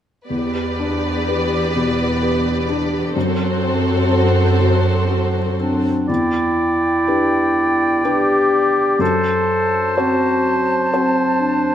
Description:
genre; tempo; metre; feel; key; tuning
cinematic; 62 BPM; 3/4; rubato; E minor; A4 = 442 Hz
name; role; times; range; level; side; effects
warm symphonic violin section; second line; 0.3-5.8 s; A4 to D5; -23 LUFS; left 2 dB; none
clear symphonic viola section; accompaniment; 0.3-5.8 s; B3 to G4; -24 LUFS; right 1 dB; none
felt-muted upright piano; accompaniment; 0.3-11.7 s; E2 to C5; -21 LUFS; left 2 dB; none
clear symphonic cello section; bass; 0.3-5.9 s; E2 to F#2; -21 LUFS; right 2 dB; none
warm clarinet; second line; 5.6-11.7 s; D4 to A4; -18 LUFS; left 1 dB; none
silver concert flute; second line; 6.1-11.7 s; G5 to A5; -23 LUFS; equal; none
warm oboe; second line; 6.1-11.7 s; C5 to D5; -21 LUFS; right 1 dB; none
room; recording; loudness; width
moderate scoring stage reverb, RT60 1.6 s; none; -15 LUFS; side -10 dB against mid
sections
0.3-6.1 A section; 6.1-11.7 B section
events
none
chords
0.3 Em7; 3.2 F#dim; 6.1 Em7; 9.0 F#dim

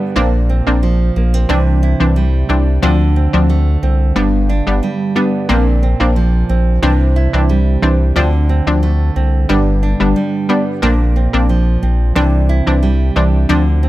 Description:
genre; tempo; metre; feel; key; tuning
dancehall; 90 BPM; 4/4; straight; C major; A4 = 442 Hz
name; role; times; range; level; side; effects
nylon-string guitar; arpeggios; 0.0-13.9 s; G2 to E4; -19 LUFS; right 4 dB; none
analog pluck; accompaniment; 0.2-13.6 s; E3 to D4; -17 LUFS; left 1 dB; chorus
saturated sub bass; bass; 0.2-13.9 s; G1 to D2; -13 LUFS; equal; none
room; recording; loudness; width
little or no reverb; none; -11 LUFS; side -16 dB against mid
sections
0.0-13.9 A section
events
none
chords
0.2 Bbadd9; 1.5 Cadd9; 2.8 Dm7; 4.2 G; 5.5 Bbadd9; 6.8 Cadd9; 8.2 Dm7; 9.5 G; 10.8 Bbadd9; 12.2 Cadd9

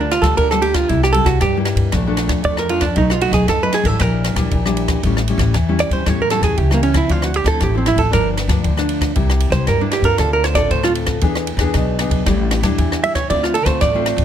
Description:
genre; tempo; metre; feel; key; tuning
samba and choro; 116 BPM; 4/4; straight; D minor; A4 = 440 Hz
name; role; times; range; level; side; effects
hollow-body jazz guitar; melody; 0.0-14.2 s; Bb3 to E5; -18 LUFS; right 4 dB; none
nylon-string guitar; accompaniment; 0.0-14.2 s; F2 to A4; -21 LUFS; left 4 dB; none
upright bass; bass; 0.0-14.2 s; G1 to G2; -20 LUFS; equal; none
compact cocktail drum kit; drums; 0.1-14.2 s; kick drum, ride cymbal, rim click; -21 LUFS; equal; none
room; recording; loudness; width
little or no reverb; close, detailed microphones; -14 LUFS; side -9 dB against mid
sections
0.0-14.2 A section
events
hollow-body jazz guitar solo 0.0-14.2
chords
0.0 Gm7/D; 0.9 C7; 1.9 Bbmaj7; 3.0 B7; 4.0 Em7b5/Bb; 5.0 A7; 7.1 Dm9; 8.1 Gm7; 9.2 C7; 10.2 Dm7; 11.2 E7; 12.3 A7sus4; 13.3 Dm7

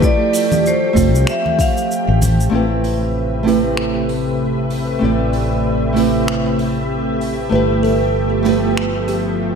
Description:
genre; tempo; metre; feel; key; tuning
sunset chillout; 96 BPM; 4/4; swing 57% on 16ths; A minor; A4 = 445 Hz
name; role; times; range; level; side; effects
vibraphone with medium hard mallets; melody; 0.0-2.2 s; C5 to F5; -19 LUFS; left 1 dB; digital delay, slapback echo
nylon-string guitar; accompaniment; 0.0-9.6 s; A3 to D5; -19 LUFS; moving between right 1 dB and right 7 dB; auto-pan, digital delay, slapback echo
soft string machine; sustained chords; 0.0-9.6 s; C3 to G5; -20 LUFS; left 1 dB; ensemble chorus
electronic kick drum; drums; 0.0-1.7 s; none; -17 LUFS; left 1 dB; none
vintage brush drum kit; drums; 0.0-9.2 s; finger snaps, hi-hat, shaker; -28 LUFS; right 1 dB; none
congas; percussion; 0.5-2.4 s; none; -23 LUFS; right 1 dB; none
fretless electric bass; bass; 1.0-9.6 s; F1 to C2; -20 LUFS; left 1 dB; none
kalimba; arpeggios; 7.5-9.3 s; G4 to B4; -23 LUFS; equal; vintage 12-bit sampler grit, digital delay, slapback echo
room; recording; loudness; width
moderate lush hall reverb, RT60 1.5 s, small room ambience; big arena sound; -14 LUFS; side -6 dB against mid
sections
0.0-2.5 A section; 2.5-9.6 B section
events
none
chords
0.0 Fmaj9; 2.5 Am9; 7.5 G13

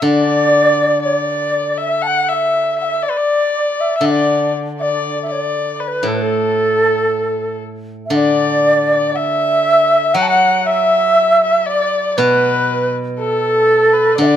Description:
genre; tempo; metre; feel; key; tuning
chinese traditional, Chinese chamber ensemble; 60 BPM; 4/4; rubato; unclear; A4 = 440 Hz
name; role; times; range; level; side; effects
bright low xiao; melody; 0.0-14.4 s; A4 to A5; -15 LUFS; right 2 dB; none
rich erhu; second line; 0.0-14.4 s; A4 to F#5; -19 LUFS; left 7 dB; none
steel-string zither; accompaniment; 0.0-14.4 s; A2 to F#3; -20 LUFS; equal; none
room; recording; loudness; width
light reverb; close, detailed microphones; -13 LUFS; side -10 dB against mid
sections
0.0-8.1 A section; 8.1-14.4 B section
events
none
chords
none

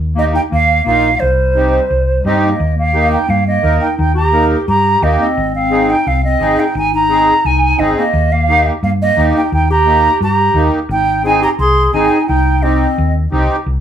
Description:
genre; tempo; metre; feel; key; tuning
latin; 174 BPM; 4/4; straight; unclear; A4 = 440 Hz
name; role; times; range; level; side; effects
hollow-body short-scale fingered electric bass; bass; 0.0-13.8 s; Ab1 to G2; -16 LUFS; equal; none
hollow concert flute; melody; 0.2-13.1 s; C5 to C6; -14 LUFS; right 2 dB; none
breathy clarinet; second line; 0.2-13.2 s; G3 to Ab4; -19 LUFS; left 2 dB; none
accordion; accompaniment; 0.2-13.6 s; Bb3 to Bb4; -16 LUFS; right 1 dB; light tremolo tuning
room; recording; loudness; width
wet studio ambience, RT60 0.5 s; band playing live in one room; -11 LUFS; side -9 dB against mid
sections
0.0-2.6 A section; 2.6-13.7 B section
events
none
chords
0.0 Ebadd9; 1.2 Cm; 2.6 Eb; 5.4 Ab; 8.1 Eb; 10.9 Ab; 12.3 Cm

